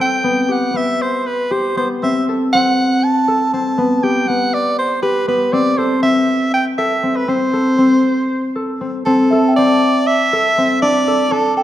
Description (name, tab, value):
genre	contemporary instrumental, chamber music in an uneven meter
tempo	239 BPM (eighths)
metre	7/8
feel	straight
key	A dorian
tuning	A4 = 440 Hz
part	clear soprano saxophone	melody	0.0-11.6 s	A4 to A5	-17 LUFS	right 1 dB	none
part	concert harp	arpeggios	0.0-11.6 s	B3 to A4	-16 LUFS	left 1 dB	none
part	celesta	texture	9.3-11.6 s	E5 to A5	-22 LUFS	right 1 dB	none
room	wet scoring stage reverb, RT60 1.8 s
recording	none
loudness	-13 LUFS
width	side -12 dB against mid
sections	0.0-9.1 A section; 9.1-11.6 B section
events	none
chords	0.2 Cmaj7(no3)/B; 2.0 Am; 3.8 B7(no3); 5.5 Am; 9.1 Am7; 10.8 Dsus4